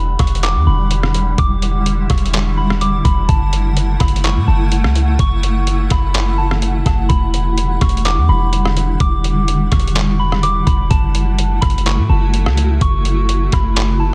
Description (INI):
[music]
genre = hip hop, atmospheric cloud-rap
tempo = 126 BPM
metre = 4/4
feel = half-time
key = E dorian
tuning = A4 = 442 Hz
[part]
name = soft synth bell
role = melody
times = 0.0-14.1 s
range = A5 to D6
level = -25 LUFS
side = equal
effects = chorus, phaser, low-pass filter, delay
[part]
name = granular cloud pad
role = sustained chords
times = 0.0-14.1 s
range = C#3 to F#5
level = -24 LUFS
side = equal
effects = built-in reverb
[part]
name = clean 808-style bass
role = bass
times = 0.0-14.1 s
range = E1 to A2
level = -18 LUFS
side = equal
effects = none
[part]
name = wind-like tuned noise texture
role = texture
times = 0.0-14.1 s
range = D4 to F#5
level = -36 LUFS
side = equal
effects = built-in reverb
[part]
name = trip hop sampler-style drum kit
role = drums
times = 0.2-13.9 s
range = handclaps, hi-hat, kick drum, rim click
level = -20 LUFS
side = equal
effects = none
[sound]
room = little or no reverb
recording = dense, heavily limited modern master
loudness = -15 LUFS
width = mono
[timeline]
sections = 0.0-14.1 A section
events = none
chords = 0.0 Em9; 3.3 F#m7; 7.1 Em9; 10.9 F#m7